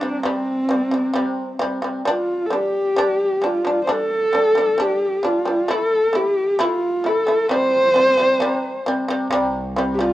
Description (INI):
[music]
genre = mongolian traditional, Mongolian folk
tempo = 66 BPM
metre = 4/4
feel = straight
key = C zhi mode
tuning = A4 = 442 Hz
[part]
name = dark horsehead fiddle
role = melody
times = 0.0-10.1 s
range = C4 to C5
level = -18 LUFS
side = equal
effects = cassette tape, plate reverb
[part]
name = shamisen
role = arpeggios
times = 0.0-10.1 s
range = C3 to E4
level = -22 LUFS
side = equal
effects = cassette tape, plate reverb
[part]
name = dark cello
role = drone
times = 9.3-10.1 s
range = C2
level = -28 LUFS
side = right 1 dB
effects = cassette tape
[sound]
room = wet booth ambience, RT60 0.2 s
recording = home recording on cassette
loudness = -17 LUFS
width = side -14 dB against mid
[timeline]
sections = 0.0-9.3 A section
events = none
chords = 0.0 C5; 2.1 G5; 5.7 A5; 7.5 C5